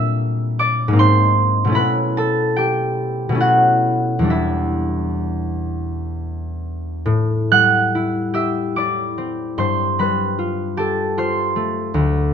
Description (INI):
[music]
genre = classical, solo harp piece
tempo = 63-78 BPM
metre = 3/4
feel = rubato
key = A dorian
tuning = A4 = 439 Hz
[part]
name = concert harp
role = solo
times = 0.0-12.3 s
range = D2 to F#6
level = -16 LUFS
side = equal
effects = none
[sound]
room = moderate stone room reverb, RT60 1.1 s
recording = minimal, uncompressed stereo recording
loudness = -16 LUFS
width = side -7 dB against mid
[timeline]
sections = 0.0-7.0 A section; 7.0-12.3 B section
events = none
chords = 0.0 Bbadd9; 1.0 G#add9; 1.7 B9sus4; 4.3 Em7; 7.0 Am7; 9.6 G9sus4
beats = 0.18 0.96 | 1.74 2.55 3.38 | 4.28 5.20 6.10 | 7.04 7.92 8.75 | 9.58 10.38 11.18 | 11.95